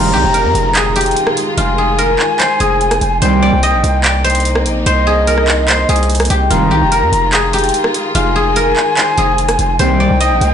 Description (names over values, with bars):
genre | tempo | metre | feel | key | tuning
hip hop, trap | 146 BPM | 4/4 | half-time | F dorian | A4 = 440 Hz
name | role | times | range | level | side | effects
guzheng | melody | 0.0-10.5 s | F4 to Eb5 | -15 LUFS | left 1 dB | digital delay
mellow concert flute | second line | 0.0-10.5 s | Eb5 to Bb5 | -18 LUFS | left 2 dB | digital delay
warm studio string section | sustained chords | 0.0-10.5 s | C3 to F4 | -23 LUFS | left 1 dB | none
analog synth brass | stabs | 0.0-0.2, 3.2-3.5, 6.5-6.8, 9.8-10.1 s | C2 to G3 | -16 LUFS | right 2 dB | chorus
hard-hitting 808-style bass | bass | 0.0-10.5 s | F1 to F2 | -16 LUFS | right 1 dB | none
downlifter | sound effects | 0.0-3.2 s | none | -26 LUFS | right 2 dB | none
trap drum kit | drums | 0.3-10.5 s | handclaps, hi-hat, rim click | -18 LUFS | right 1 dB | none
room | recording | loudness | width
moderate studio reverb, RT60 0.6 s | blown-out, overdriven recording, overdrive, nothing above 11.0 kHz | -10 LUFS | side -8 dB against mid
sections
0.0-10.5 A section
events
none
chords
0.0 Fm7; 3.2 Cm7; 6.5 Fm7; 9.8 Cm7